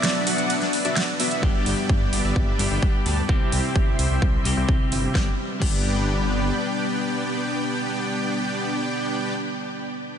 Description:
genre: EDM, festival progressive house.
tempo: 129 BPM.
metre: 4/4.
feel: straight.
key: G major.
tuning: A4 = 440 Hz.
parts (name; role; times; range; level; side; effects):
bright baroque flute; melody; 0.0-1.0 s; D5; -35 LUFS; equal; none.
lush unison pad; sustained chords; 0.0-8.9 s; F#3 to C6; -32 LUFS; equal; chorus, phaser, sidechain pumping.
wide unison lead; arpeggios; 0.0-1.4 s; E5 to F#5; -33 LUFS; equal; sidechain pumping, ping-pong delay.
dense compressed supersaw; riff; 0.0-9.3 s; B3 to A5; -27 LUFS; equal; sidechain pumping, low-pass filter, ping-pong delay.
big-room dance drum kit; drums; 0.0-5.8 s; crash cymbal, hi-hat, ride cymbal, snare drum; -28 LUFS; right 1 dB; overdrive.
clean electric guitar; accompaniment; 1.4-9.4 s; G2 to G4; -28 LUFS; left 2 dB; vintage 12-bit sampler grit, sidechain pumping, ping-pong delay.
detuned saw bass; bass; 1.4-6.5 s; G1 to G2; -26 LUFS; equal; sidechain pumping.
electronic kick drum; drums; 1.4-5.8 s; none; -21 LUFS; equal; overdrive.
room: wet huge ambient reverb, RT60 7.7 s.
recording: dreamy mix soaked in reverb, nothing above 10.6 kHz.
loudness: -20 LUFS.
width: side -8 dB against mid.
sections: 0.0-1.4 A section; 1.4-5.2 B section; 5.2-8.9 C section.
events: break 0.0-1.4; drop 0.0-1.4; filter sweep on supersaw synth 1.4-5.2.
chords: 0.0 Bm; 1.4 G; 3.3 C; 5.2 G.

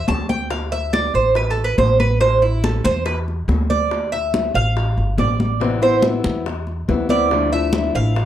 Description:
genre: latin, Cuban son and guajira.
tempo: 141 BPM.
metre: 4/4.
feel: straight.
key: A minor.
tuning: A4 = 438 Hz.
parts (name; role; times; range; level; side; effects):
Cuban tres; arpeggios; 0.0-8.3 s; E4 to A5; -19 LUFS; right 3 dB; none.
upright bass; bass; 0.0-8.3 s; G1 to E2; -21 LUFS; equal; none.
bongos; percussion; 0.1-8.3 s; none; -30 LUFS; left 6 dB; none.
congas; percussion; 0.1-8.3 s; none; -24 LUFS; left 1 dB; none.
fingerpicked acoustic archtop guitar; accompaniment; 5.6-8.2 s; C3 to E4; -21 LUFS; left 5 dB; none.
room: light reverb.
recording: dark, warm production.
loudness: -16 LUFS.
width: side -11 dB against mid.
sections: 0.0-8.3 A section.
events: Cuban tres solo 0.0-8.3.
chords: 0.0 A5; 0.5 D5; 2.2 A5; 3.9 Dmadd9; 5.6 Amadd9; 7.3 Dmadd9.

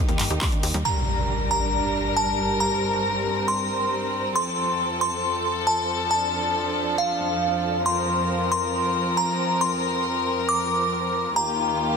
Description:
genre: uplifting trance.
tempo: 137 BPM.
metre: 4/4.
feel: straight.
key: G minor.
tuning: A4 = 440 Hz.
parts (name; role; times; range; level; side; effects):
dark chamber string section; sustained chords; 0.0-12.0 s; Eb2 to Bb4; -25 LUFS; equal; sidechain pumping.
wide unison pluck; arpeggios; 0.1-0.8 s; G2 to G4; -35 LUFS; left 1 dB; phaser, sidechain pumping, dub echo.
tight sequencer bass; bass; 0.1-0.8 s; Eb2; -26 LUFS; equal; sidechain pumping.
techno drum kit; drums; 0.1-0.8 s; handclaps, hi-hat; -30 LUFS; equal; overdrive, studio ambience.
electronic kick drum; drums; 0.4-0.5 s; none; -23 LUFS; equal; overdrive, studio ambience.
glassy synth bell; second line; 0.9-11.9 s; F5 to D6; -24 LUFS; equal; chorus, dub echo.
impact; sound effects; 0.9-2.6 s; none; -29 LUFS; equal; none.
room: moderate huge ambient reverb, RT60 7.0 s.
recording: dense, heavily limited modern master.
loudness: -21 LUFS.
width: side -6 dB against mid.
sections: 0.9-12.0 A section.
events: impact 0.9-2.6.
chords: 0.0 Eb; 0.9 Gm; 4.4 F; 7.9 Bbsus2/F; 11.4 Ebadd9.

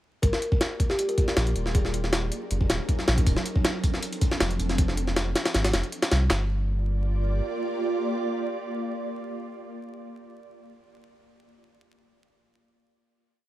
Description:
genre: drum and bass, jungle.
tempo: 158 BPM.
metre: 4/4.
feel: straight.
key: G minor.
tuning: A4 = 439 Hz.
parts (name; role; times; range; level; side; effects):
kalimba; melody; 0.2-2.0 s; G4 to Bb4; -32 LUFS; left 1 dB; dub echo.
ethereal airy pad; sustained chords; 0.8-9.6 s; F3 to D5; -32 LUFS; right 1 dB; ensemble chorus, built-in reverb.
soft dub sub bass; bass; 0.2-7.4 s; D1 to C2; -26 LUFS; equal; tube saturation.
jungle sampler-style drum kit; drums; 0.2-6.4 s; handclaps, hi-hat, kick drum, snare drum; -24 LUFS; equal; none.
dusty soul sampler-style drum kit; drums; 3.3-4.8 s; hi-hat, snare drum, tambourine; -38 LUFS; right 3 dB; none.
room: little or no reverb.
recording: vinyl crackle.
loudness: -23 LUFS.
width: side -14 dB against mid.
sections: 0.2-6.3 drop; 6.3-9.3 final chord.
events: drop 0.2-6.3.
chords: 0.2 Gm7; 1.7 Ebm7; 3.3 Dm7; 4.8 N.C.; 6.3 Gm7.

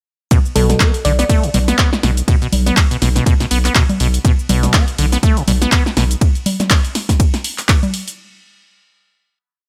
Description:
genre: acid house.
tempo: 122 BPM.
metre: 4/4.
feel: swing 57% on 16ths.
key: B minor.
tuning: A4 = 440 Hz.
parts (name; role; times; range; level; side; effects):
acid bass, saw; riff; 0.3-6.0 s; B2 to B3; -22 LUFS; equal; tube saturation, subtle chorus, sidechain pumping.
electronic kick drum; drums; 0.3-7.8 s; none; -16 LUFS; equal; overdrive.
punchy analog drum machine; drums; 0.3-8.2 s; congas, handclaps, hi-hat, ride cymbal, shaker, snare drum; -20 LUFS; equal; overdrive.
thumb-piano-like synth pluck; melody; 0.6-1.3 s; A4 to D5; -23 LUFS; equal; chorus, digital delay.
saturated sub bass; bass; 0.6-6.2 s; B1; -18 LUFS; equal; sidechain pumping.
room: digital ambience.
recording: none.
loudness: -15 LUFS.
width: mono.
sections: 0.3-8.2 drop.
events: drop 0.3-8.2.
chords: none.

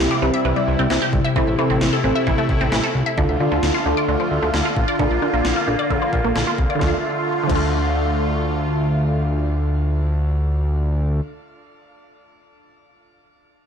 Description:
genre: synth-pop.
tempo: 132 BPM.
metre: 4/4.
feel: straight.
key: D minor.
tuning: A4 = 440 Hz.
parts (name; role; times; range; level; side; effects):
mellow FM electric piano; accompaniment; 0.0-11.3 s; C4 to D5; -25 LUFS; equal; chorus, shimmer reverb.
phased analog pad; sustained chords; 0.0-10.6 s; C3 to F4; -23 LUFS; equal; phaser, chorus, shimmer reverb.
fat analog bass; bass; 0.0-11.2 s; G1 to D2; -21 LUFS; equal; tube saturation.
resonant blip pluck; arpeggios; 0.1-11.4 s; D3 to E5; -24 LUFS; equal; phaser, digital delay, shimmer reverb.
gated 80s digital drum machine; drums; 0.9-7.6 s; crash cymbal, kick drum, snare drum; -23 LUFS; equal; gated reverb, gated reverb snare.
room: wet small room ambience, RT60 0.5 s.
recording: blown-out, overdriven recording, overdrive.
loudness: -17 LUFS.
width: side -7 dB against mid.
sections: 0.0-6.8 A section; 6.8-10.4 B section.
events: none.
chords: 0.0 C; 1.4 Am; 3.2 Dm; 5.0 Bb; 6.8 Dm.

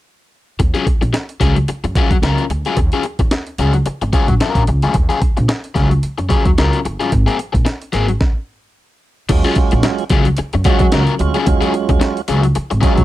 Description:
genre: funk.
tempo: 110 BPM.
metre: 4/4.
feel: swing 56% on 16ths.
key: Eb minor.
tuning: A4 = 440 Hz.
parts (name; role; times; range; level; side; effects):
overdriven electric guitar; accompaniment; 0.6-13.0 s; Gb3 to Bb4; -19 LUFS; left 5 dB; phaser.
upright bass; bass; 0.6-13.0 s; G1 to Gb2; -17 LUFS; equal; none.
breakbeat sampler-style drum kit; drums; 0.6-13.0 s; crash cymbal, hi-hat, kick drum, snare drum; -16 LUFS; equal; none.
tonewheel organ; stabs; 9.3-13.0 s; Gb3 to Gb4; -19 LUFS; right 8 dB; overdrive, slow rotary speaker.
room: light reverb.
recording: dark, warm production.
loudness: -13 LUFS.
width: side -15 dB against mid.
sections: 0.6-9.3 A section; 9.3-13.0 B section.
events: stop 8.2-9.3.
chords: 0.6 Ebm11 (rootless); 7.1 Ab9; 9.3 Ebm11 (rootless).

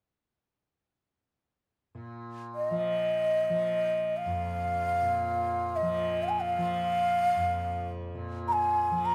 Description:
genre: indian classical.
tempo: free time.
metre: none.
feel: none.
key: unclear.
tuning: A4 = 440 Hz.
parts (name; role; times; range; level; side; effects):
tanpura; drone; 1.9-9.1 s; F2 to F3; -38 LUFS; equal; none.
breathy bansuri; melody; 2.6-9.1 s; Eb5 to Bb5; -29 LUFS; equal; none.
room: moderate stone room reverb, RT60 1.1 s.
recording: band playing live in one room.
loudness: -29 LUFS.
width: mono.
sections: 1.9-9.1 A section.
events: none.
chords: none.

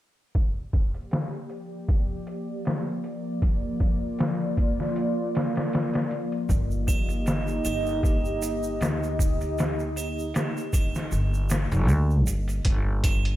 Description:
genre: trip hop.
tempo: 78 BPM.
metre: 4/4.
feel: swing 55% on 16ths.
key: G minor.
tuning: A4 = 441 Hz.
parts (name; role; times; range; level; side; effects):
trip hop sampler-style drum kit; drums; 0.3-13.4 s; hi-hat, kick drum, snare drum; -26 LUFS; equal; overdrive, low-pass filter on hats, low-pass filter on kick, low-pass filter on snare, low-pass filter on room.
warbly tape-like pad; sustained chords; 1.3-12.6 s; F3 to Eb5; -30 LUFS; equal; chorus, built-in reverb.
upright bass; bass; 6.5-13.4 s; F1 to D2; -26 LUFS; equal; none.
egg shaker and triangle; percussion; 6.5-13.2 s; none; -37 LUFS; right 5 dB; none.
room: digital ambience.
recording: none.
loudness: -24 LUFS.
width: side -14 dB against mid.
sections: 0.3-12.7 A section.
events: filter sweep on ambient pad 0.3-12.7; kick drops out 11.1-12.7.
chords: 0.3 Gm7; 6.5 Eb/G; 12.7 N.C..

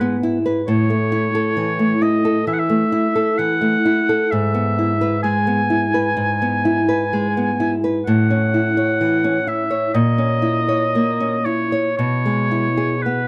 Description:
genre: romantic duo for oboe and classical guitar.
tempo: 56-68 BPM.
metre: 4/4.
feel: rubato.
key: E major.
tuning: A4 = 440 Hz.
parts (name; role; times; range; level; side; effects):
clear oboe; melody; 0.0-13.3 s; B4 to G#5; -24 LUFS; equal; none.
nylon-string guitar; accompaniment; 0.0-13.3 s; G#2 to C#5; -20 LUFS; equal; none.
room: small room ambience.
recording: dry, close 1970s-style studio recording.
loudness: -18 LUFS.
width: mono.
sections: 0.0-13.3 A section.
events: none.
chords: 0.0 E/G#; 0.7 A; 4.3 E/G#; 8.1 F#m7/A; 10.0 A#dim; 12.0 E/B.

